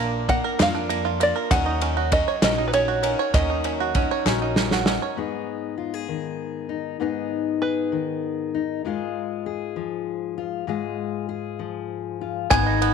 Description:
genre	indie folk with a building arrangement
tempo	66 BPM (dotted quarters)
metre	6/8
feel	straight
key	unclear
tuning	A4 = 440 Hz
part	open-back banjo	melody	0.0-4.5, 7.6-8.5, 12.5-12.9 s	Cb5 to Bb5	-25 LUFS	right 1 dB	none
part	picked swing-style acoustic guitar	accompaniment	0.0-5.2, 12.5-12.9 s	Ab2 to Bb4	-28 LUFS	left 11 dB	none
part	bluegrass banjo	arpeggios	0.0-5.2, 12.5-12.9 s	Bb3 to Db5	-26 LUFS	right 13 dB	slapback echo
part	upright bass	bass	0.0-5.0, 12.5-12.9 s	Ab1 to F2	-27 LUFS	right 1 dB	none
part	natural country drum kit	drums	0.3-5.0, 12.5-12.9 s	kick drum, ride cymbal, snare drum	-25 LUFS	right 1 dB	none
part	group handclap	percussion	0.6-4.4, 12.5-12.7 s	none	-34 LUFS	left 14 dB	none
part	fingerpicked steel-string acoustic guitar	accompaniment	5.2-12.9 s	Ab2 to Ab4	-26 LUFS	left 10 dB	none
part	glockenspiel with brass mallets	second line	12.5-12.9 s	Ab6	-24 LUFS	right 16 dB	none
part	clear upright piano	accompaniment	12.5-12.9 s	Ab1 to Eb5	-35 LUFS	right 10 dB	none
room	light reverb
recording	1960s-style stereo with parts hard left and right, tape saturation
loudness	-22 LUFS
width	side -6 dB against mid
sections	0.0-5.2 A section; 5.2-12.5 B section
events	drum fill 4.2-5.2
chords	0.0 Bb; 1.5 Ebm7; 5.2 Abm; 8.8 Fm/Ab

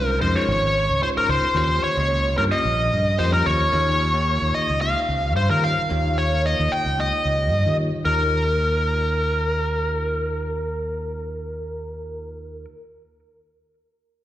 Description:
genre	electric jazz fusion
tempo	111 BPM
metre	4/4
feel	straight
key	Eb mixolydian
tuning	A4 = 436 Hz
part	smooth overdriven lead guitar	melody	0.0-12.6 s	Bb4 to G5	-22 LUFS	equal	slapback echo
part	bell-like tine electric piano	accompaniment	0.0-12.7 s	Ab3 to Eb5	-30 LUFS	left 1 dB	phaser, slapback echo
part	fingered electric bass	bass	0.0-12.7 s	Ab1 to Eb3	-24 LUFS	equal	none
room	light reverb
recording	live gig heard through the venue's PA, recital hall reverb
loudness	-19 LUFS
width	side -13 dB against mid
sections	0.0-3.7 A section; 3.7-8.1 B section; 8.1-12.4 C section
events	none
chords	0.0 Dbmaj7; 1.6 Eb13; 3.7 Eb9

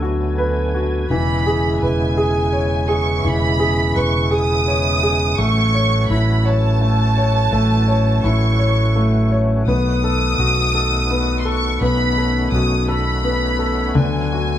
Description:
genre	six-eight pop ballad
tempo	56 BPM (dotted quarters)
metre	6/8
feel	straight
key	E major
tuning	A4 = 440 Hz
part	warm concert grand piano	accompaniment	0.0-14.6 s	D3 to C#5	-20 LUFS	left 2 dB	none
part	tonewheel organ	sustained chords	0.0-14.6 s	C#3 to G#5	-26 LUFS	right 2 dB	overdrive, chorus vibrato, slow rotary speaker
part	fretless electric bass	bass	0.0-14.6 s	E1 to D2	-19 LUFS	right 1 dB	none
part	warm studio violin section	second line	1.1-14.6 s	G#5 to D#6	-22 LUFS	right 2 dB	none
room	moderate large studio reverb, RT60 0.9 s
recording	band playing live in one room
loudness	-15 LUFS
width	side -11 dB against mid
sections	0.0-14.6 A section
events	none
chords	0.0 D6; 1.1 E6; 5.4 A6; 9.7 B7; 14.0 D6

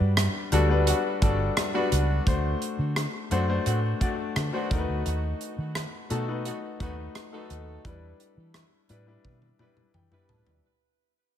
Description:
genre	1980s-style pop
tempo	86 BPM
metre	4/4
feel	straight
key	unclear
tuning	A4 = 439 Hz
part	bright concert grand piano	accompaniment	0.0-10.7 s	G3 to A5	-29 LUFS	left 4 dB	none
part	vintage muted fingered electric bass	bass	0.0-10.6 s	G1 to E3	-26 LUFS	right 1 dB	none
part	modern studio drum kit	drums	0.2-10.6 s	hi-hat, kick drum, rim click, toms	-29 LUFS	right 1 dB	gated reverb
part	warm horn section	stabs	0.5-10.6 s	D3 to B4	-37 LUFS	right 5 dB	digital delay
room	light reverb, studio ambience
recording	none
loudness	-24 LUFS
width	side -10 dB against mid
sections	0.0-10.6 A section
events	fade-out 0.0-10.6; drum fill 9.2-10.6; grand piano fill 9.6-10.6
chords	0.0 Gmaj7; 2.3 D7; 4.7 B7; 7.8 Em7

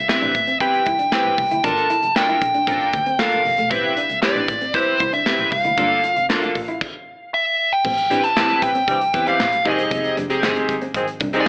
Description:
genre	early-eighties boogie funk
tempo	116 BPM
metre	4/4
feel	straight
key	A phrygian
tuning	A4 = 442 Hz
part	nasal lead guitar with a parked wah	melody	0.0-11.5 s	C5 to A5	-21 LUFS	equal	overdrive
part	dark double bass	bass	0.0-11.5 s	E1 to A2	-36 LUFS	equal	none
part	chorused polysynth	accompaniment	0.1-11.4 s	Bb3 to B4	-26 LUFS	equal	none
part	modern studio drum kit	drums	0.1-11.5 s	crash cymbal, handclaps, hi-hat, kick drum, snare drum	-28 LUFS	equal	gated reverb
part	mellow electric guitar	riff	0.2-11.4 s	A3 to F4	-32 LUFS	equal	lush chorus
part	mellow horn section	second line	8.9-11.4 s	Eb3 to Ab4	-26 LUFS	equal	none
room	light reverb, small room ambience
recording	AM radio sound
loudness	-19 LUFS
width	mono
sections	0.0-7.8 A section; 7.8-11.5 B section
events	stop 6.8-7.8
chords	0.0 Am9; 1.6 Gm9; 3.7 Am9; 5.8 Gm9; 6.8 N.C.; 7.8 Am9; 9.7 Fm9

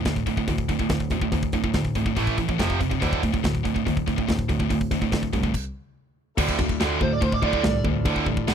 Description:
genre	heavy metal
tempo	142 BPM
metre	4/4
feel	straight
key	D minor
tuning	A4 = 443 Hz
part	distorted electric guitar	riff	0.0-8.5 s	D2 to A3	-27 LUFS	right 12 dB	overdrive
part	scooped high-gain guitar	riff	0.0-8.5 s	D2 to A3	-28 LUFS	left 14 dB	distortion
part	clear double bass	bass	0.0-8.5 s	F1 to D2	-27 LUFS	left 1 dB	none
part	tight metal drum kit	drums	0.1-8.5 s	crash cymbal, hi-hat, kick drum, snare drum	-27 LUFS	left 1 dB	none
part	pipe organ, principal chorus	sustained chords	6.4-8.5 s	D3 to F4	-36 LUFS	left 3 dB	none
part	dark smooth lead guitar	melody	7.0-7.8 s	C5 to D5	-28 LUFS	right 6 dB	overdrive, tape echo
room	little or no reverb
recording	dry, close 1970s-style studio recording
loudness	-21 LUFS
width	side -8 dB against mid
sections	0.0-6.4 A section; 6.4-8.5 B section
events	stop 5.5-6.4; lead electric guitar solo 6.4-8.5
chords	0.0 D5; 2.2 A5; 2.6 F5; 3.0 D5; 5.5 N.C.; 6.4 Dm

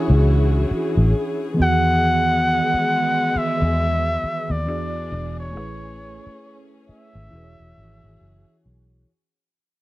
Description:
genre	R&B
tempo	68 BPM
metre	4/4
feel	swing 59% on 16ths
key	E major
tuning	A4 = 441 Hz
part	warm flugelhorn	melody	0.0-8.6 s	G#4 to F#5	-22 LUFS	equal	none
part	mellow tine electric piano	accompaniment	0.0-9.1 s	D#3 to D5	-26 LUFS	right 2 dB	slow stereo tremolo
part	dark studio string section	sustained chords	0.0-9.1 s	E3 to C#5	-28 LUFS	left 2 dB	none
part	vintage muted fingered electric bass	bass	0.1-9.0 s	E1 to E2	-20 LUFS	equal	none
room	light reverb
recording	dark, warm production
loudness	-17 LUFS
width	side -17 dB against mid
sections	0.0-9.1 A section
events	fade-out 0.0-9.1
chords	0.0 Dmaj9#11; 1.6 Emaj7; 4.7 E9; 5.5 Amaj9; 7.3 E69

